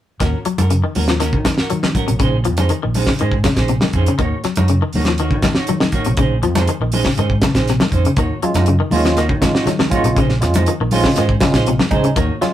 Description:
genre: afrobeat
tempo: 120 BPM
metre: 4/4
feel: straight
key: Eb dorian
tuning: A4 = 439 Hz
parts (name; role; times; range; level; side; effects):
- semi-hollow electric guitar; arpeggios; 0.2-12.5 s; C3 to Gb3; -21 LUFS; left 4 dB; none
- semi-hollow electric guitar; stabs; 0.2-12.3 s; Bb3 to Db5; -23 LUFS; right 5 dB; harmonic tremolo
- fingered electric bass; bass; 0.2-12.5 s; Bb1 to Eb3; -18 LUFS; equal; none
- damped 70s drum kit; drums; 0.2-12.5 s; hi-hat, kick drum, snare drum; -19 LUFS; equal; none
- congas; percussion; 0.6-12.0 s; none; -22 LUFS; left 2 dB; none
- barky tine electric piano; accompaniment; 8.4-12.5 s; Ab3 to F4; -20 LUFS; right 3 dB; fast tremolo
room: moderate studio reverb, RT60 0.5 s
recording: rough rehearsal-room recording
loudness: -14 LUFS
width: side -12 dB against mid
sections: 0.2-12.5 A section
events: none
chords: 0.2 Ebm7; 2.2 Bbm11; 4.2 Ebm7; 6.2 Bbm11; 8.2 Ebm7; 10.2 Bbm11

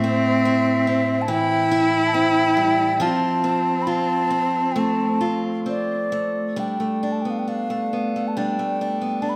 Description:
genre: celtic folk, Celtic slow air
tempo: 65-72 BPM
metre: 4/4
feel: rubato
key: G mixolydian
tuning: A4 = 439 Hz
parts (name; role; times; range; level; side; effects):
- baroque flute; melody; 0.0-9.4 s; D5 to B5; -26 LUFS; equal; none
- clear cello; second line; 0.0-6.1 s; C4 to E4; -24 LUFS; equal; none
- picked acoustic archtop guitar; accompaniment; 0.0-9.4 s; A2 to F4; -27 LUFS; equal; none
room: moderate scoring stage reverb, RT60 1.9 s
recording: none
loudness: -21 LUFS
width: mono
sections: 0.0-6.6 A section; 6.6-9.4 B section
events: none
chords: 0.0 Am7; 3.0 F; 6.6 Gadd9

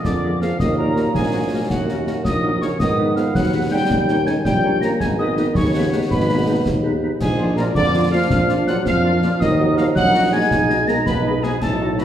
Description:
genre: military-style march for wind band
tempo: 109 BPM (dotted quarters)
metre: 6/8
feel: straight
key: Eb minor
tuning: A4 = 440 Hz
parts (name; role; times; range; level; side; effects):
- mellow trumpet section; melody; 0.0-12.0 s; Gb4 to Bb5; -24 LUFS; equal; none
- mellow euphonium; second line; 0.0-12.0 s; Gb2 to Bb3; -23 LUFS; right 1 dB; none
- clear trombone section; sustained chords; 0.0-12.0 s; Eb3 to Eb4; -27 LUFS; right 2 dB; none
- warm tuba; bass; 0.0-12.0 s; Ab1 to Ab2; -21 LUFS; right 1 dB; none
- concert snare drum, concert bass drum and clash cymbals; drums; 0.0-12.0 s; none; -24 LUFS; left 1 dB; none
- mellow piccolo; second line; 0.1-12.0 s; Gb5 to Bb6; -27 LUFS; left 1 dB; none
- mellow woodwind section; second line; 0.2-12.0 s; Eb4 to Eb5; -36 LUFS; left 1 dB; none
- dark French horn section; accompaniment; 0.2-12.0 s; F#3 to Bb4; -28 LUFS; left 2 dB; none
room: wet recital hall reverb, RT60 1.4 s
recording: heard from further back in the room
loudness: -16 LUFS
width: side -10 dB against mid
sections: 0.0-12.0 A section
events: none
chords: 0.0 Bb7; 0.6 Ebm; 2.8 Abm; 3.9 Eb7; 5.0 Abm; 7.2 Bb7; 9.4 Ebm; 10.5 Abm/Cb

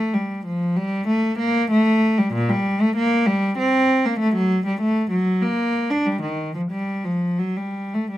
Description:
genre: classical, baroque-style suite movement for unaccompanied cello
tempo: 96 BPM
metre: 3/4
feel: rubato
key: G minor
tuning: A4 = 440 Hz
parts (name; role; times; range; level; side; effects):
- rich cello; solo; 0.0-8.2 s; Bb2 to D4; -18 LUFS; equal; none
room: light reverb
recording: close, detailed microphones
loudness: -18 LUFS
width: side -14 dB against mid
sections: 0.0-8.2 A section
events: none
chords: none

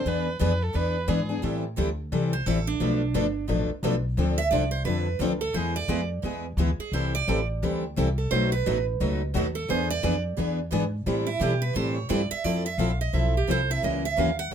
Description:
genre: acoustic string swing (jazz manouche)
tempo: 174 BPM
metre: 4/4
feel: swing 61% on 8ths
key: A minor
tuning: A4 = 445 Hz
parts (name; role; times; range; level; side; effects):
- dark violin; melody; 0.0-1.4 s; G#4 to B4; -31 LUFS; right 4 dB; none
- picked steel-string acoustic guitar; accompaniment; 0.0-14.5 s; B2 to A4; -28 LUFS; left 4 dB; none
- upright bass; bass; 0.0-14.5 s; G1 to B2; -28 LUFS; equal; none
- picked steel-string acoustic guitar; accompaniment; 0.1-14.5 s; B2 to B4; -34 LUFS; right 6 dB; none
- picked steel-string acoustic guitar; second line; 2.3-14.5 s; D4 to F#5; -29 LUFS; right 7 dB; none
room: light reverb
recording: close, detailed microphones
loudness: -24 LUFS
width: side -8 dB against mid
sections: 0.0-1.4 A section; 1.4-12.4 B section; 12.4-14.5 B section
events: steel-string acoustic guitar solo 1.4-14.5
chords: 0.1 E7; 1.4 Am7; 2.8 Bm7b5; 4.2 Dm7; 5.5 E; 6.9 Am7; 8.3 B7; 9.7 E7; 11.1 Am7; 12.4 Fmaj7; 13.8 F#7

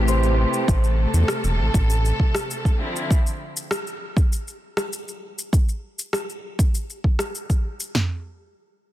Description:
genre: sunset chillout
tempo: 99 BPM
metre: 4/4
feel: straight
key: unclear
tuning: A4 = 440 Hz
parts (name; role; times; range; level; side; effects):
- tine electric piano; accompaniment; 0.0-0.7 s; A3 to B5; -28 LUFS; equal; medium stereo tremolo, auto-pan, low-pass filter, tape echo
- clear studio string section; sustained chords; 0.0-3.1 s; C3 to A4; -27 LUFS; equal; none
- concert harp; arpeggios; 0.0-2.4 s; G4 to C5; -29 LUFS; left 2 dB; low-pass filter, tape echo
- round analog bass; bass; 0.0-2.1 s; E1 to E2; -19 LUFS; equal; none
- electronic shaker and rim click; drums; 0.1-7.9 s; none; -29 LUFS; left 1 dB; overdrive, small room ambience
- deep house drum kit; drums; 0.7-8.1 s; kick drum, snare drum, toms; -19 LUFS; equal; overdrive, small room ambience
room: light reverb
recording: dense, heavily limited modern master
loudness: -20 LUFS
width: side -14 dB against mid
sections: 0.0-8.0 A section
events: none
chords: 0.0 Am9; 2.8 Dm9; 8.0 N.C.

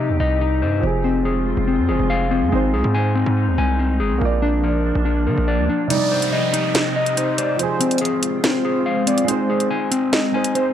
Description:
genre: hip hop, drill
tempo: 142 BPM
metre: 4/4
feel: half-time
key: C minor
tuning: A4 = 440 Hz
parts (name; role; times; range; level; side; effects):
- dark grand piano; accompaniment; 0.0-10.7 s; C3 to D5; -26 LUFS; right 6 dB; low-pass filter, analog delay
- glassy FM pad; sustained chords; 0.0-10.7 s; C3 to G4; -26 LUFS; equal; ensemble chorus, built-in reverb
- mellow electric guitar; arpeggios; 0.0-10.7 s; C4 to Ab5; -21 LUFS; left 4 dB; low-pass filter, analog delay
- distorted 808-style bass; bass; 0.0-5.7 s; F1 to D3; -20 LUFS; right 1 dB; distortion
- warm velvety synth lead; second line; 5.9-10.7 s; C5 to Eb5; -24 LUFS; right 4 dB; chorus, analog delay
- drill drum kit; drums; 5.9-10.7 s; hi-hat, snare drum; -21 LUFS; right 1 dB; none
- downlifter; sound effects; 5.9-9.3 s; none; -29 LUFS; right 3 dB; none
room: light reverb, digital ambience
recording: echo-heavy mix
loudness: -17 LUFS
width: side -10 dB against mid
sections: 0.0-5.9 A section; 5.9-10.7 B section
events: kick muted 5.9-10.7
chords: 0.0 Cm; 0.8 Fm; 2.5 Ab; 4.2 Bb; 5.9 Cm; 7.6 Fm; 9.3 Ab

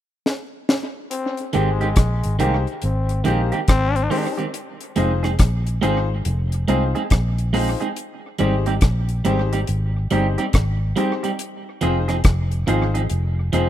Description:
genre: roots reggae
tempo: 70 BPM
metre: 4/4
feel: swing 64% on 16ths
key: Ab major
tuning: A4 = 441 Hz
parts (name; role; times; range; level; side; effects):
- deep reggae drum kit; drums; 0.3-13.7 s; hi-hat, kick drum, rim click, snare drum; -20 LUFS; equal; analog delay
- growling trombone; second line; 1.1-4.3 s; Ab3 to C4; -26 LUFS; left 4 dB; tape echo
- clean electric guitar; accompaniment; 1.5-13.7 s; Eb3 to Ab4; -24 LUFS; right 4 dB; tape echo
- clear baby grand piano; stabs; 1.5-13.7 s; Eb4 to C5; -28 LUFS; left 8 dB; none
- vintage muted fingered electric bass; bass; 1.6-13.7 s; F1 to C2; -21 LUFS; equal; none
room: small room ambience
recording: rough home demo mix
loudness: -18 LUFS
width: side -12 dB against mid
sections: 0.0-1.1 A section; 1.1-8.0 B section; 8.0-13.7 C section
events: drum fill 0.3-1.1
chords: 0.0 N.C.; 1.1 Abmaj7; 4.5 Fm7; 8.0 Abmaj7; 11.4 Fm7

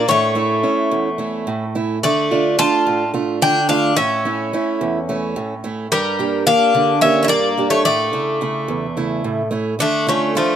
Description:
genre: greek folk, Greek bouzouki band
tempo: 216 BPM (eighths)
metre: 7/8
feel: straight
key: unclear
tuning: A4 = 439 Hz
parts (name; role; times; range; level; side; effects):
- Greek bouzouki; melody; 0.0-10.6 s; A3 to A5; -19 LUFS; left 2 dB; none
- Greek bouzouki; second line; 0.0-10.6 s; F3 to F4; -21 LUFS; left 2 dB; none
- picked acoustic archtop guitar; accompaniment; 0.0-10.6 s; E2 to G4; -20 LUFS; right 4 dB; none
room: light reverb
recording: close, detailed microphones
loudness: -16 LUFS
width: side -9 dB against mid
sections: 0.0-9.8 A section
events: none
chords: 0.1 A; 2.0 Dm; 4.0 A; 5.9 Gm; 7.9 A; 9.8 Dm

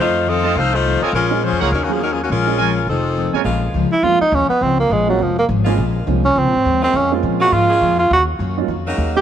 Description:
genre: jazz, big band swing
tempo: 207 BPM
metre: 4/4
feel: swing 59% on 8ths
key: Bb minor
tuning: A4 = 440 Hz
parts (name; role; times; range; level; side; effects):
- clear saxophone section; melody; 0.0-3.3 s; Eb3 to F5; -18 LUFS; left 3 dB; none
- picked steel-string acoustic guitar; accompaniment; 0.0-9.2 s; F2 to Gb4; -25 LUFS; left 10 dB; none
- warm concert grand piano; accompaniment; 0.0-9.2 s; Bb2 to Ab4; -24 LUFS; right 15 dB; none
- upright bass; bass; 0.0-9.2 s; F1 to Bb2; -21 LUFS; equal; none
- brilliant trumpet section; stabs; 0.4-3.4 s; Eb4 to A5; -27 LUFS; right 11 dB; none
- edgy saxophone section; sustained chords; 3.4-9.2 s; Db3 to Ab4; -27 LUFS; left 1 dB; none
- breathy tenor saxophone; melody; 3.9-9.2 s; F3 to G4; -16 LUFS; right 2 dB; none
room: light reverb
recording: 1960s-style stereo with parts hard left and right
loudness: -14 LUFS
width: side -9 dB against mid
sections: 0.0-3.5 A section; 3.5-9.2 B section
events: tenor saxophone solo 3.5-9.2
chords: 0.0 F7; 1.1 Bbm7; 1.7 Ebm7; 2.3 Bbm7; 2.9 F7; 3.5 Bbm7; 8.1 Ebm7

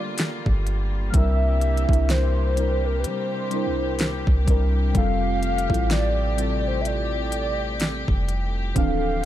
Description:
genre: contemporary R&B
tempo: 63 BPM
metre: 4/4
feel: swing 58% on 16ths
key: unclear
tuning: A4 = 440 Hz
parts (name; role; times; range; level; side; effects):
- warm velvety synth lead; melody; 0.0-9.3 s; Bb4 to F5; -28 LUFS; equal; chorus, digital delay
- muted felt-like synth keys; accompaniment; 0.0-9.3 s; E3 to Bb4; -28 LUFS; equal; chorus, phaser
- warm studio string section; sustained chords; 0.0-9.3 s; C3 to G4; -32 LUFS; left 2 dB; none
- smooth R&B drum kit; drums; 0.2-9.0 s; hi-hat, kick drum, snare drum; -23 LUFS; equal; overdrive
- soft 808-style bass; bass; 0.5-9.3 s; D1 to G3; -24 LUFS; equal; none
room: digital ambience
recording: dark, warm production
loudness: -20 LUFS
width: side -12 dB against mid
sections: 0.0-9.3 A section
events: none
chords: 0.0 Gm7; 1.1 C7; 4.9 Fmaj7

